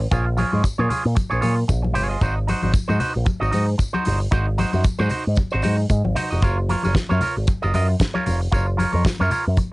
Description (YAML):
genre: disco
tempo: 114 BPM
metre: 4/4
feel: swing 56% on 16ths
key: unclear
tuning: A4 = 439 Hz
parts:
  - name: electric guitar with an envelope filter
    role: accompaniment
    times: 0.0-9.6 s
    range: Eb4 to Eb5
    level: -24 LUFS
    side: right 2 dB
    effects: phaser, cassette tape
  - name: picked electric bass with an envelope filter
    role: bass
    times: 0.0-9.6 s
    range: F1 to Bb2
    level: -20 LUFS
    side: equal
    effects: none
  - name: damped 70s drum kit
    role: drums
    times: 0.1-9.7 s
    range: hi-hat, kick drum, snare drum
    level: -22 LUFS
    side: equal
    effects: cassette tape
  - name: tambourine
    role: percussion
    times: 0.1-9.7 s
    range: none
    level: -42 LUFS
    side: left 4 dB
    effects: none
  - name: congas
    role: percussion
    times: 0.4-9.7 s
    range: none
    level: -28 LUFS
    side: left 3 dB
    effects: none
room: little or no reverb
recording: home recording on cassette, nothing above 11.0 kHz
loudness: -18 LUFS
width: side -22 dB against mid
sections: 0.0-9.7 A section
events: none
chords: 0.0 Bbm7; 2.2 Ab7; 6.4 Gbmaj7